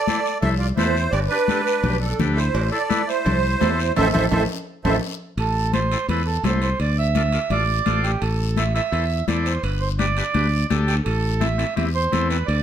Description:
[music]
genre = latin, cumbia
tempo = 169 BPM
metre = 4/4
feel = straight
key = A minor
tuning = A4 = 440 Hz
[part]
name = musette accordion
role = melody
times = 0.0-5.0 s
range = A4 to E5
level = -23 LUFS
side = right 4 dB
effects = none
[part]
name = accordion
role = second line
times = 0.0-12.6 s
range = C4 to E5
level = -26 LUFS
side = right 6 dB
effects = none
[part]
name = combo organ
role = accompaniment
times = 0.1-12.4 s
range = C4 to D5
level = -28 LUFS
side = left 5 dB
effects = none
[part]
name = congas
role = percussion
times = 0.1-12.3 s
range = none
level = -27 LUFS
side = left 4 dB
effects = none
[part]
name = guiro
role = percussion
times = 0.1-12.6 s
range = none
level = -36 LUFS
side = left 8 dB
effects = none
[part]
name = modern bright fingered electric bass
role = bass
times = 0.4-12.6 s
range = G1 to E2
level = -22 LUFS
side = equal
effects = none
[part]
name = cowbell and timbales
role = percussion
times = 0.4-12.6 s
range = none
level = -31 LUFS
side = right 4 dB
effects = none
[sound]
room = moderate studio reverb, RT60 0.7 s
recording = none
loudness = -19 LUFS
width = side -9 dB against mid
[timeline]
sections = 0.0-5.4 A section; 5.4-12.6 B section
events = band accent 4.0-5.4; drum fill 4.7-5.4; accordion solo 5.4-12.6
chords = 0.0 Am; 1.1 G; 2.5 Am; 6.8 Dm; 8.2 Am; 9.6 G; 11.1 Am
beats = 0.07 0.42 0.78 | 1.13 1.49 1.84 2.20 | 2.55 2.90 3.26 3.61 | 3.97 4.32 4.67 5.03 | 5.38 5.74 6.09 6.45 | 6.80 7.16 7.51 7.87 | 8.22 8.58 8.93 9.29 | 9.64 10.00 10.35 10.71 | 11.06 11.42 11.77 12.13 | 12.48

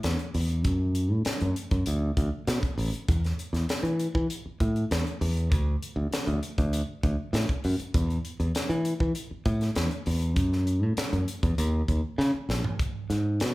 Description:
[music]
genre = electric jazz fusion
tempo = 99 BPM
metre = 4/4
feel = straight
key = unclear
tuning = A4 = 440 Hz
[part]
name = modern bright fingered electric bass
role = bass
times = 0.0-13.5 s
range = A1 to E3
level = -26 LUFS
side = equal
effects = none
[part]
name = crisp fusion drum kit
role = drums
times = 0.0-13.5 s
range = hi-hat, kick drum, snare drum, toms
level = -30 LUFS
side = equal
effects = none
[sound]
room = moderate large studio reverb, RT60 0.8 s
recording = band playing live in one room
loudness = -25 LUFS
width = side -19 dB against mid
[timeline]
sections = 0.0-12.8 A section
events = drum fill 12.2-12.8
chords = none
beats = 0.05 | 0.65 1.26 1.87 2.48 | 3.09 3.69 4.30 4.91 | 5.52 6.12 6.73 7.34 | 7.94 8.55 9.16 9.77 | 10.37 10.98 11.59 12.19 | 12.80 13.41

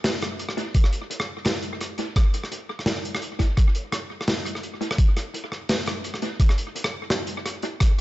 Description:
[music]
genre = drum and bass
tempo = 170 BPM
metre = 4/4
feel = swing 54% on 16ths, half-time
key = none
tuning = none
[part]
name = crunchy breakbeat drum kit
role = drums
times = 0.0-8.0 s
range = hi-hat, rim click, snare drum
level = -26 LUFS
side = equal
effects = analog delay
[part]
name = electronic kick drum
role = drums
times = 0.7-7.9 s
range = none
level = -18 LUFS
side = equal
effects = none
[sound]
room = light reverb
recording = echo-heavy mix, nothing above 8.0 kHz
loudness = -22 LUFS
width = side -16 dB against mid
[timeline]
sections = 0.0-8.0 A section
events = none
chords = none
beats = 0.04 0.40 | 0.75 1.10 1.46 1.81 | 2.16 2.52 2.87 3.22 | 3.57 3.93 4.28 4.63 | 4.99 5.34 5.69 6.04 | 6.40 6.75 7.10 7.46 | 7.81

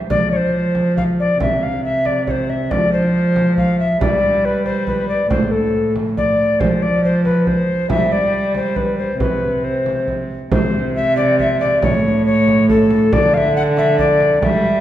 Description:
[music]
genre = classical, renaissance-style consort dance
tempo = 138 BPM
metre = 3/4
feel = straight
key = C major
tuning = A4 = 440 Hz
[part]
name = alto recorder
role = melody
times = 0.1-14.8 s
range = A4 to F#5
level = -17 LUFS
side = left 2 dB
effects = none
[part]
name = warm cello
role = bass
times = 0.1-14.8 s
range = A2 to G3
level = -18 LUFS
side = right 1 dB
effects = none
[part]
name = frame drum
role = percussion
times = 0.1-14.6 s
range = none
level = -22 LUFS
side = right 2 dB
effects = none
[sound]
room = wet recital hall reverb, RT60 1.7 s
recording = heard from further back in the room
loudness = -14 LUFS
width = side -12 dB against mid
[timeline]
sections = 0.1-10.5 A section; 10.5-14.8 B section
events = none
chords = 0.1 F5; 1.4 C; 2.7 F5; 4.0 G5; 5.3 Asus4; 6.6 F5; 7.9 G5; 9.2 N.C.; 10.5 Cadd9; 11.8 A; 13.1 Dsus2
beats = | 0.10 0.54 0.97 | 1.41 1.84 2.27 | 2.71 3.14 3.57 | 4.01 4.44 4.87 | 5.30 5.74 6.17 | 6.60 7.03 7.47 | 7.90 8.34 8.77 | 9.21 9.65 10.08 | 10.52 10.96 11.39 | 11.83 12.26 12.70 | 13.13 13.56 13.99 | 14.43

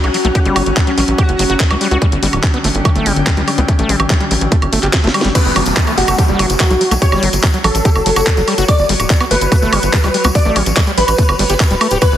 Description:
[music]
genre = psychedelic trance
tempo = 144 BPM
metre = 4/4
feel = straight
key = F# phrygian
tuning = A4 = 443 Hz
[part]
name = overtone-sweeping drone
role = sustained chords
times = 0.0-12.2 s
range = F#3 to C#5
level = -23 LUFS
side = left 1 dB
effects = chorus, built-in reverb, sidechain pumping
[part]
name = overdriven acid bass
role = riff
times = 0.0-12.1 s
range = F#3 to G4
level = -20 LUFS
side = left 1 dB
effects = auto-pan, sidechain pumping, digital delay
[part]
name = tight sequencer bass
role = bass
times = 0.0-12.2 s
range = D1 to C#2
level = -17 LUFS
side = equal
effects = none
[part]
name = garage drum kit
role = drums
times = 0.0-12.1 s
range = crash cymbal, handclaps, hi-hat, snare drum, woodblock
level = -18 LUFS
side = right 1 dB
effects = studio ambience
[part]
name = airy breathy pad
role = texture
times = 0.0-5.4 s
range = D3 to G5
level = -22 LUFS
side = left 1 dB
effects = chorus, sidechain pumping
[part]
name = electronic kick drum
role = drums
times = 0.4-12.1 s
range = none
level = -13 LUFS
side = equal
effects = studio ambience
[part]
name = metallic wobble bass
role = second line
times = 0.9-1.6, 5.8-6.3 s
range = A3 to F#4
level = -27 LUFS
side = right 1 dB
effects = none
[part]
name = supersaw stab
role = melody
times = 5.4-12.2 s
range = F#4 to D5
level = -17 LUFS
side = equal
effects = phaser, sidechain pumping, digital delay
[part]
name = tambourine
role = percussion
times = 5.4-12.2 s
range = none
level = -26 LUFS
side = left 2 dB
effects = none
[part]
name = downlifter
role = sound effects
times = 5.4-8.7 s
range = none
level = -22 LUFS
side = equal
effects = none
[sound]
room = light reverb, digital ambience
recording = heavily compressed radio sound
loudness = -11 LUFS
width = side -11 dB against mid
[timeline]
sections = 0.0-5.4 A section; 5.4-12.2 B section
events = filter sweep on acid bass 0.0-5.4; drum fill 4.9-5.4; drop 5.4-12.2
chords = 0.0 F#5; 2.0 G5; 5.4 F#5; 8.7 G5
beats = | 0.35 0.77 1.18 1.60 | 2.02 2.43 2.85 3.27 | 3.68 4.10 4.52 4.93 | 5.35 5.77 6.18 6.60 | 7.02 7.43 7.85 8.27 | 8.68 9.10 9.52 9.93 | 10.35 10.77 11.18 11.60 | 12.02

